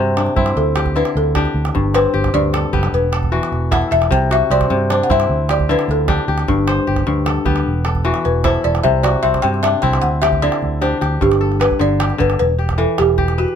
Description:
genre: west african traditional, West African string and xylophone music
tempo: 101 BPM (dotted quarters)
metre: 12/8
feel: straight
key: G major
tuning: A4 = 440 Hz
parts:
  - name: kora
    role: arpeggios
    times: 0.0-13.6 s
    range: G2 to C5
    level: -19 LUFS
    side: left 3 dB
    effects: none
  - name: fingered electric bass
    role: bass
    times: 0.0-13.4 s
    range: E1 to G2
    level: -19 LUFS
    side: right 1 dB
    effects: none
  - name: calabash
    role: percussion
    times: 0.2-13.5 s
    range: none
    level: -23 LUFS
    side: right 4 dB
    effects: none
  - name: balafon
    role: melody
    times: 0.6-13.5 s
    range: F#4 to G5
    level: -18 LUFS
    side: equal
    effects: plate reverb
room: light reverb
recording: close, detailed microphones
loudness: -14 LUFS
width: side -8 dB against mid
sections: 0.0-11.2 A section; 11.2-13.6 B section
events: balafon solo 0.0-11.2; drum fill 10.6-11.2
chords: 0.0 C; 0.6 D5; 1.7 G; 2.9 Em; 4.1 C; 5.3 D5; 6.5 G; 7.7 Em; 8.8 C; 10.0 D9sus4; 11.2 G; 12.4 Em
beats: 0.56 1.15 | 1.75 2.34 2.93 3.52 | 4.11 4.70 5.29 5.89 | 6.48 7.07 7.66 8.25 | 8.84 9.44 10.03 10.62 | 11.21 11.80 12.40 12.99

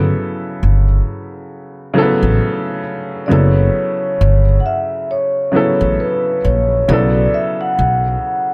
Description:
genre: hip hop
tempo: 67 BPM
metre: 4/4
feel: swing 57% on 16ths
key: unclear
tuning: A4 = 440 Hz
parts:
  - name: clear upright piano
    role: accompaniment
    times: 0.0-8.5 s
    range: C#3 to A4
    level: -21 LUFS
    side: equal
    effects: cassette tape, low-pass filter
  - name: upright bass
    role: bass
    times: 0.0-8.2 s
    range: F#1 to B1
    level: -16 LUFS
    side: equal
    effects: none
  - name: vibraphone with soft mallets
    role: melody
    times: 3.3-8.5 s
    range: B4 to F#5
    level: -20 LUFS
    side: equal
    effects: low-pass filter
room: light reverb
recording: none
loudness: -16 LUFS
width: mono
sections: 0.0-8.5 A section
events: none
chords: 0.0 Gmaj9; 3.3 F#m7; 6.9 B5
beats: 0.61 1.51 2.40 | 3.30 4.20 5.09 5.99 | 6.88 7.78

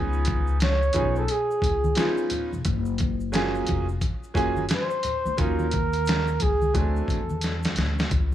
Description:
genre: hip hop, jazz-hop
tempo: 88 BPM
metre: 4/4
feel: swing 61% on 16ths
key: unclear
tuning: A4 = 440 Hz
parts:
  - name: bright upright piano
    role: accompaniment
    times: 0.0-7.2 s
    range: E#3 to G#5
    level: -29 LUFS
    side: right 2 dB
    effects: none
  - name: upright bass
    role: bass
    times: 0.0-8.3 s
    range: E#1 to E2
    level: -26 LUFS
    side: left 1 dB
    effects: none
  - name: maracas and congas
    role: percussion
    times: 0.1-8.3 s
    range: none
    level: -36 LUFS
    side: left 1 dB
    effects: none
  - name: trip hop sampler-style drum kit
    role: drums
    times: 0.2-8.3 s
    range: hi-hat, kick drum, snare drum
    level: -26 LUFS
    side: equal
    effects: none
  - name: breathy flugelhorn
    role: melody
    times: 0.6-7.8 s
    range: G#4 to C#5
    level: -26 LUFS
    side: right 1 dB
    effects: slapback echo
room: small room ambience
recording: none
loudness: -22 LUFS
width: side -12 dB against mid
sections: 0.0-8.1 A section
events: drum fill 7.4-8.1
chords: 0.0 C#9; 2.7 F#maj9; 5.4 D#m7; 6.7 D7#11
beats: 0.61 1.29 1.97 | 2.65 3.33 4.02 4.70 | 5.38 6.06 6.74 7.42 | 8.11

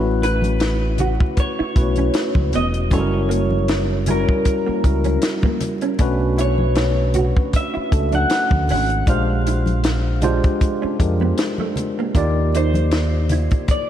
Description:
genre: R&B, neo-soul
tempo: 78 BPM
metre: 4/4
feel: swing 54% on 16ths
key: unclear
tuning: A4 = 440 Hz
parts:
  - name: tine electric piano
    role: accompaniment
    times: 0.0-13.9 s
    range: G3 to D5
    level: -23 LUFS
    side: left 1 dB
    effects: slow stereo tremolo
  - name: deep dub fingered electric bass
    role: bass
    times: 0.0-13.5 s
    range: E1 to E#2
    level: -20 LUFS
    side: equal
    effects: none
  - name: electric guitar through a small old amp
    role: melody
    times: 0.2-13.9 s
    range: A#4 to F#5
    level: -25 LUFS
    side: equal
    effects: wide subtle chorus, ping-pong delay
  - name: vintage hollow-body jazz guitar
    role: second line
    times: 0.2-13.5 s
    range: A3 to F#4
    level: -28 LUFS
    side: right 6 dB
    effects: ensemble chorus
  - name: compact cocktail drum kit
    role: drums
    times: 0.2-13.9 s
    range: hi-hat, kick drum, snare drum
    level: -20 LUFS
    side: equal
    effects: none
  - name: congas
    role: percussion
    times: 0.2-13.9 s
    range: none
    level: -29 LUFS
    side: left 1 dB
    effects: none
room: moderate lush hall reverb, RT60 2.8 s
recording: dreamy mix soaked in reverb, vinyl crackle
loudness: -16 LUFS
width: side -10 dB against mid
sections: 0.0-13.9 A section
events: none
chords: 0.0 A69; 2.9 F#7b9; 6.0 Bm9; 9.1 A#13; 12.1 D#maj9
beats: 0.61 1.38 2.15 | 2.92 3.69 4.46 5.22 | 5.99 6.76 7.53 8.30 | 9.07 9.84 10.61 11.38 | 12.15 12.92 13.69

